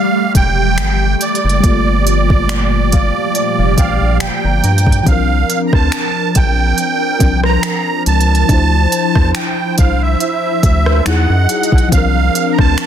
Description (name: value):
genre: contemporary R&B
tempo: 70 BPM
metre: 4/4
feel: swing 54% on 16ths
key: unclear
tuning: A4 = 440 Hz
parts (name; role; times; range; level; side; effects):
- musette accordion; melody; 0.0-12.9 s; D5 to Bb5; -17 LUFS; right 5 dB; digital delay
- mellow FM electric piano; accompaniment; 0.0-12.9 s; E3 to Bb5; -20 LUFS; left 4 dB; chorus
- hollow soft pad; sustained chords; 0.0-12.9 s; Bb2 to D#5; -20 LUFS; equal; ensemble chorus
- round analog bass; bass; 0.3-12.8 s; E1 to G2; -14 LUFS; equal; none
- smooth R&B drum kit; drums; 0.3-12.9 s; finger snaps, hi-hat, kick drum, rim click; -16 LUFS; equal; soft clipping on snare
room: digital ambience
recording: dense, heavily limited modern master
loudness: -11 LUFS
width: side -9 dB against mid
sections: 0.0-5.1 A section; 5.1-12.9 B section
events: FM electric piano fill 2.5-5.1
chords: 0.0 Fmaj9; 1.6 Gm9; 5.1 C9sus4; 8.5 Dm9; 11.1 Emaj9; 11.9 C9sus4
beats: 0.78 | 1.64 2.49 3.35 4.21 | 5.07 5.92 6.78 7.64 | 8.49 9.35 10.21 11.06 | 11.92 12.78